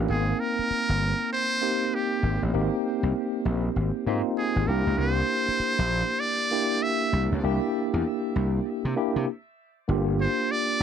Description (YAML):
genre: R&B, new jack swing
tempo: 98 BPM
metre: 4/4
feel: swing 62% on 16ths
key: unclear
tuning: A4 = 440 Hz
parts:
  - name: bright tine electric piano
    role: accompaniment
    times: 0.0-10.8 s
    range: Bb3 to G5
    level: -27 LUFS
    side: equal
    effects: medium stereo tremolo
  - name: gritty slap bass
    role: bass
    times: 0.0-10.8 s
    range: G1 to C3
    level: -26 LUFS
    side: equal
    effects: overdrive
  - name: trumpet with metal mute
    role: melody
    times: 0.1-10.8 s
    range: G4 to E5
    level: -28 LUFS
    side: right 1 dB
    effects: tape echo
room: little or no reverb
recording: dry, close 1970s-style studio recording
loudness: -23 LUFS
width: side -8 dB against mid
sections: 0.1-9.9 A section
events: stop 9.3-9.9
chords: 0.1 Abmaj7; 4.7 C7; 9.9 Gm7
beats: | 0.09 0.70 1.31 1.92 | 2.53 3.15 3.76 4.37 | 4.98 5.60 6.21 6.82 | 7.43 8.04 8.66 9.27 | 9.88 10.49